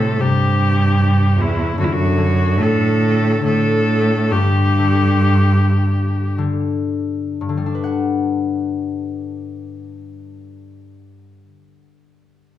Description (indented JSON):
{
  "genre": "celtic folk, Celtic slow air",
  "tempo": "46-78 BPM",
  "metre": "3/4",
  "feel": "rubato",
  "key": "G major",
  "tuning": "A4 = 440 Hz",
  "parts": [
    { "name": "clear cello", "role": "melody", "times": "0.0-6.4 s", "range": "E2 to A2", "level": "-16 LUFS", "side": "right 2 dB", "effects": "none" },
    { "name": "bright viola", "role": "second line", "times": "0.0-6.4 s", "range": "E4 to A4", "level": "-21 LUFS", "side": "left 3 dB", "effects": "none" },
    { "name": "concert harp", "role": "accompaniment", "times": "0.0-11.4 s", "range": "G2 to F#5", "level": "-22 LUFS", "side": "left 5 dB", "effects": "none" }
  ],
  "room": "wet recital hall reverb, RT60 1.4 s",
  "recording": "recorded in a church or concert hall",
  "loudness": "-15 LUFS",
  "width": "side -12 dB against mid",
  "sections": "0.0-7.6 A section; 7.6-11.4 B section",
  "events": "slowing down 1.8-7.6",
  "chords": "0.0 C5; 1.8 N.C.; 4.3 G5; 7.6 Gmaj7"
}